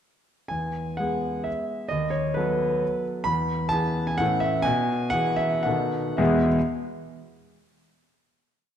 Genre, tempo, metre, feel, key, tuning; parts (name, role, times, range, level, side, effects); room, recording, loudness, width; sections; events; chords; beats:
classical, romantic triple-time dance for piano with dotted rhythms; 104-139 BPM; 3/4; rubato; E major; A4 = 435 Hz
clear grand piano; solo; 0.5-6.6 s; D#2 to B5; -23 LUFS; equal
wet scoring stage reverb, RT60 1.6 s; -23 LUFS; side -9 dB against mid
0.5-6.2 A section; 6.2-7.7 final chord
0.5 E; 1.9 B7/D#; 3.3 E; 4.2 A; 4.7 E/B; 5.7 B7; 6.2 E
| 0.52 1.00 1.47 | 1.91 2.37 2.82 | 3.27 3.73 4.21 | 4.65 5.13 5.66 | 6.20